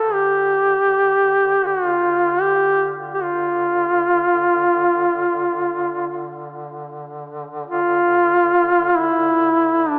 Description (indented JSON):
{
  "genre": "caucasian folk, Caucasian lament",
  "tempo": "free time",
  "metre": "none",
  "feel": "none",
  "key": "D minor",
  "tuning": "A4 = 441 Hz",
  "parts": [
    { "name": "mellow duduk", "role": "melody", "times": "0.0-10.0 s", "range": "D4 to A4", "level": "-18 LUFS", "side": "equal", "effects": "none" },
    { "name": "warm duduk", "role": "drone", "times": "0.0-10.0 s", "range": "D3", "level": "-35 LUFS", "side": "equal", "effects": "none" }
  ],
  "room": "moderate church reverb, RT60 3.4 s",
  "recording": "AM radio sound",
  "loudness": "-18 LUFS",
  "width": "mono",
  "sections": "0.0-10.0 A section",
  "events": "slowing down 6.5-10.0",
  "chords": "none"
}